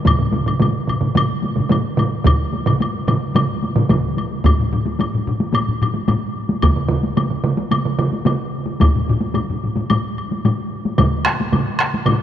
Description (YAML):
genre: japanese traditional, taiko drum ensemble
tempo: 110 BPM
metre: 4/4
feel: straight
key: none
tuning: none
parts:
  - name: solo taiko drums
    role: percussion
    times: 0.1-12.2 s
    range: none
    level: -21 LUFS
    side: right 4 dB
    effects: none
  - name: taiko ensemble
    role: percussion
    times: 0.1-12.2 s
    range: none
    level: -22 LUFS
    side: left 1 dB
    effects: none
  - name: taiko ensemble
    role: percussion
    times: 0.1-12.2 s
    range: none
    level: -22 LUFS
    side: left 2 dB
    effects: none
  - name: taiko ensemble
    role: percussion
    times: 0.1-11.1 s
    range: none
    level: -20 LUFS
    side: equal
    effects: none
  - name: woodblock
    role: percussion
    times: 0.1-12.2 s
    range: none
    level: -26 LUFS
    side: left 4 dB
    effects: none
room: wet cathedral reverb, RT60 5.0 s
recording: in a vast, echoing space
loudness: -16 LUFS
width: side -10 dB against mid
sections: 0.0-4.4 A section; 4.4-12.2 B section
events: none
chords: none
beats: | 0.06 0.61 1.16 1.71 | 2.25 2.80 3.35 3.90 | 4.45 4.99 5.54 6.09 | 6.63 7.18 7.72 8.27 | 8.81 9.36 9.90 10.44 | 10.99 11.53 12.07